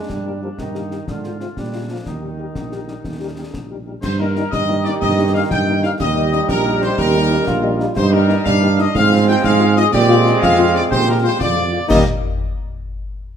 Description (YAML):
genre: military-style march for wind band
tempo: 122 BPM (dotted quarters)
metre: 6/8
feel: straight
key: Eb major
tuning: A4 = 441 Hz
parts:
  - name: mellow woodwind section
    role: second line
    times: 0.0-12.0 s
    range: D4 to G5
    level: -25 LUFS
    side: left 4 dB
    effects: none
  - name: warm euphonium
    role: second line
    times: 0.0-11.6 s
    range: C3 to Ab4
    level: -23 LUFS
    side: right 4 dB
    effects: none
  - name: dark tuba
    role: bass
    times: 0.1-12.0 s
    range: Bb1 to Bb2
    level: -19 LUFS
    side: right 2 dB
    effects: none
  - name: concert snare drum, clash cymbals and concert bass drum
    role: drums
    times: 0.1-12.1 s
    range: none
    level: -26 LUFS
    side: left 2 dB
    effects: none
  - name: warm trumpet section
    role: melody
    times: 0.3-12.0 s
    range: Bb4 to G5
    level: -22 LUFS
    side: equal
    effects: none
  - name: mellow French horn section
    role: accompaniment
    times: 0.3-12.0 s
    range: F3 to G4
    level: -23 LUFS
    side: left 6 dB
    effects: none
  - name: warm trombone section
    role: sustained chords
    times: 4.0-12.0 s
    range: Eb3 to Eb4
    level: -22 LUFS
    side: right 2 dB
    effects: none
room: moderate recital hall reverb, RT60 1.6 s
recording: none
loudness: -14 LUFS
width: side -8 dB against mid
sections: 0.0-4.0 A section; 4.0-11.9 B section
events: none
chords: 0.1 Eb/G; 1.1 Fm7/Ab; 1.6 Bb7; 2.1 Eb; 4.0 Eb/G; 6.0 Eb; 8.0 Eb/G; 8.9 Fm/Ab; 9.9 Bb9; 11.9 Eb